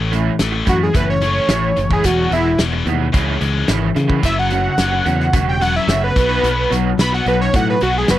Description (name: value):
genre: indie rock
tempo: 109 BPM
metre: 4/4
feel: straight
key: unclear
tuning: A4 = 441 Hz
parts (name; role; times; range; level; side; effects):
- biting overdriven guitar; riff; 0.0-8.2 s; E2 to B3; -21 LUFS; left 6 dB; none
- modern bright picked electric bass; bass; 0.0-8.2 s; E1 to C#3; -20 LUFS; equal; none
- raw garage guitar; riff; 0.1-8.2 s; E3 to F#4; -24 LUFS; right 9 dB; overdrive, analog chorus, tape echo
- loose indie drum kit; drums; 0.1-8.2 s; hi-hat, kick drum, snare drum; -18 LUFS; equal; none
- fat analog lead; melody; 0.7-8.2 s; E4 to B5; -18 LUFS; right 1 dB; none
room: little or no reverb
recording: dry, close 1970s-style studio recording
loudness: -14 LUFS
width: side -13 dB against mid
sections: 0.0-8.2 A section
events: analog synth lead solo 0.0-8.2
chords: 0.0 A; 2.0 E; 3.1 C#m; 4.2 F#m; 6.2 B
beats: 0.40 0.95 1.50 | 2.05 2.60 3.15 3.70 | 4.25 4.79 5.34 5.89 | 6.44 6.99 7.54 8.09